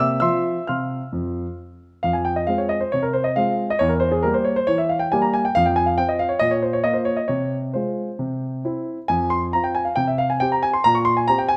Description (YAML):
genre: classical-period piano sonatina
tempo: 136 BPM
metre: 4/4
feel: straight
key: F minor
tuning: A4 = 440 Hz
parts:
  - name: warm grand piano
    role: solo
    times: 0.0-11.6 s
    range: E2 to F6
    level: -21 LUFS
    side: equal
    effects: none
room: moderate recital hall reverb, RT60 1.4 s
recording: close, detailed microphones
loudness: -21 LUFS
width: mono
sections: 0.0-2.0 A section; 2.0-11.6 A section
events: none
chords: 0.2 F5; 2.0 Fm; 3.8 Edim; 5.5 F5; 6.4 Bb5; 7.3 Fm/C; 8.2 C; 9.1 F5; 10.0 C5; 10.9 C5/Bb